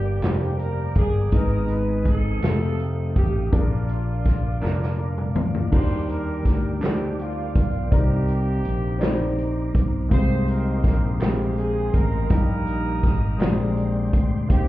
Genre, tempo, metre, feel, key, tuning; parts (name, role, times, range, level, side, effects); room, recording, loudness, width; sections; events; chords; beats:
slow gospel; 55 BPM (dotted quarters); 6/8; straight; Eb major; A4 = 440 Hz
warm horn section; melody; 0.0-14.7 s; Bb3 to C5; -31 LUFS; right 2 dB; tape echo
warm grand piano; accompaniment; 0.0-14.7 s; G2 to Bb5; -28 LUFS; left 2 dB
mellow tonewheel organ; sustained chords; 0.0-14.7 s; Ab3 to Eb6; -36 LUFS; right 1 dB; slow rotary speaker, chorus vibrato
fingered electric bass; bass; 0.0-14.7 s; F1 to Eb2; -23 LUFS; equal
swinging big-band drum kit; drums; 0.2-14.7 s; crash cymbal, hi-hat, kick drum, snare drum, toms; -22 LUFS; equal
group handclap; percussion; 0.2-13.7 s; -42 LUFS; right 2 dB
light reverb; heard muffled through a wall, club reverb, EQ; -20 LUFS; side -16 dB against mid
0.0-5.7 A section; 5.7-14.7 B section
drum fill 4.6-5.7; grand piano fill 4.6-5.7
0.0 Gm; 1.3 Abm; 2.4 F9; 3.5 Bb; 5.7 Ebmaj7; 7.9 Cm9; 10.1 Abmaj9; 12.3 Eb/Bb; 13.4 Bb13
0.23 | 1.33 2.43 | 3.52 4.62 | 5.72 6.82 | 7.92 9.02 | 10.11 11.21 | 12.31 13.40 | 14.50